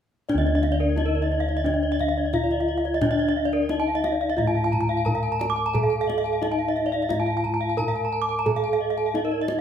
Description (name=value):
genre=Balinese gamelan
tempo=88 BPM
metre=4/4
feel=straight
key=D pelog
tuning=A4 = 438 Hz
part: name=gamelan-type bronze metallophone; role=melody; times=0.3-9.6 s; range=D4 to Bb4-20c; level=-26 LUFS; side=equal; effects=none
part: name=gamelan-type bronze metallophone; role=arpeggios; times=0.3-9.6 s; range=Bb4-20c to Bb5-20c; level=-28 LUFS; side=left 5 dB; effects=none
part: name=gamelan-type bossed gongs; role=bass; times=0.3-9.6 s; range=D2 to A4-30c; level=-28 LUFS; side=equal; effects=none
part: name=kendang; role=percussion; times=0.3-9.6 s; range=none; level=-31 LUFS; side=left 1 dB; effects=none
part: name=gamelan-type bronze metallophone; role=arpeggios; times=0.4-9.6 s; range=Bb4-20c to D6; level=-28 LUFS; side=right 3 dB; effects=none
room=moderate large studio reverb, RT60 0.9 s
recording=band playing live in one room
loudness=-21 LUFS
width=side -8 dB against mid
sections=0.3-9.6 A section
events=none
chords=none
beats=| 0.29 0.97 1.66 2.34 | 3.02 3.70 4.38 5.07 | 5.75 6.43 7.11 7.79 | 8.47 9.16